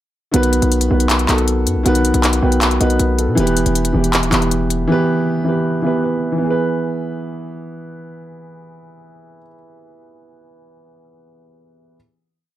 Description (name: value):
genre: hip hop, trap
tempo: 158 BPM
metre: 4/4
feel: half-time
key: unclear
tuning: A4 = 441 Hz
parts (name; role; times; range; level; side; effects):
- dark grand piano; accompaniment; 0.3-12.0 s; D#3 to G5; -17 LUFS; right 1 dB; none
- hard-hitting 808-style bass; bass; 0.3-4.9 s; D#1 to B2; -18 LUFS; left 1 dB; none
- trap drum kit; drums; 0.3-4.8 s; handclaps, hi-hat; -19 LUFS; left 1 dB; none
room: digital ambience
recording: none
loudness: -14 LUFS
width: side -13 dB against mid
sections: 0.3-6.4 hook; 6.4-9.5 final chord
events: grand piano fill 2.2-3.4, 5.7-6.4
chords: 0.3 B; 3.4 Em; 6.4 E